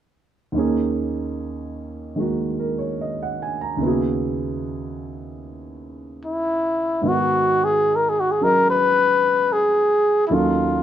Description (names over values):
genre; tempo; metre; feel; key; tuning
jazz ballad; 74 BPM; 4/4; swing 68% on 8ths; G# minor; A4 = 440 Hz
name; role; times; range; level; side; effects
warm baby grand piano; accompaniment; 0.5-10.8 s; D#2 to A#5; -24 LUFS; right 2 dB; none
breathy trumpet; melody; 6.3-10.8 s; E4 to B4; -17 LUFS; left 2 dB; plate reverb
room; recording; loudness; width
moderate club reverb, RT60 0.6 s; none; -18 LUFS; side -10 dB against mid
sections
0.5-7.0 A section; 7.0-10.8 B section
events
none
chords
0.5 D#7sus4; 3.8 C#m11/D#; 7.0 G#m7; 10.3 D#m7b5